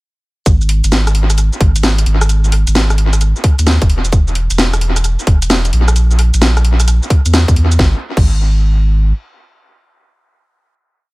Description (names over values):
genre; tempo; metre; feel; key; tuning
UK garage, two-step garage; 131 BPM; 4/4; swing 66% on 16ths; unclear; A4 = 441 Hz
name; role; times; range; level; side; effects
saturated sub bass; bass; 0.5-9.1 s; E1 to E2; -12 LUFS; equal; none
electronic kick drum; drums; 0.5-8.3 s; none; -11 LUFS; equal; none
garage drum kit; drums; 0.5-8.3 s; crash cymbal, hi-hat, rim click, shaker, snare drum; -17 LUFS; equal; dub echo
room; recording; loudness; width
little or no reverb; echo-heavy mix; -10 LUFS; side -22 dB against mid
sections
0.5-7.8 drop; 7.8-11.1 final note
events
drop 0.5-7.8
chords
none